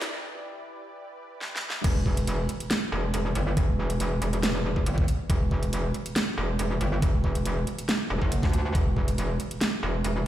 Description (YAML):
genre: heavy wobble dubstep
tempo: 139 BPM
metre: 4/4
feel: half-time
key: E minor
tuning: A4 = 441 Hz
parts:
  - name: supersaw pad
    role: sustained chords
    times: 0.0-1.8 s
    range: E3 to D5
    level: -41 LUFS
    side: equal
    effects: sidechain pumping
  - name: dubstep drum kit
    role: drums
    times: 0.0-10.1 s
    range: crash cymbal, hi-hat, snare drum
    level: -30 LUFS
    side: right 1 dB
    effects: none
  - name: metallic wobble bass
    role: bass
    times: 1.8-10.2 s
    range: E1 to D2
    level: -26 LUFS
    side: equal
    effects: chorus, overdrive
  - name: electronic kick drum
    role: drums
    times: 1.8-9.1 s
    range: none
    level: -25 LUFS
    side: equal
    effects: overdrive
room: digital ambience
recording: played on a big sound system in a bare room, large studio reverb, high-pass filter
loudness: -24 LUFS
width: side -13 dB against mid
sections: 0.0-1.8 A section; 1.8-10.3 B section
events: build-up 0.0-1.8; break 0.1-1.8; drum fill 1.4-1.8; drop 1.8-10.3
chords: 0.0 Em; 1.8 N.C.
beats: | 0.12 0.55 0.98 1.41 | 1.84 2.27 2.71 3.14 | 3.57 4.00 4.43 4.86 | 5.30 5.73 6.16 6.59 | 7.02 7.45 7.89 8.32 | 8.75 9.18 9.61 10.04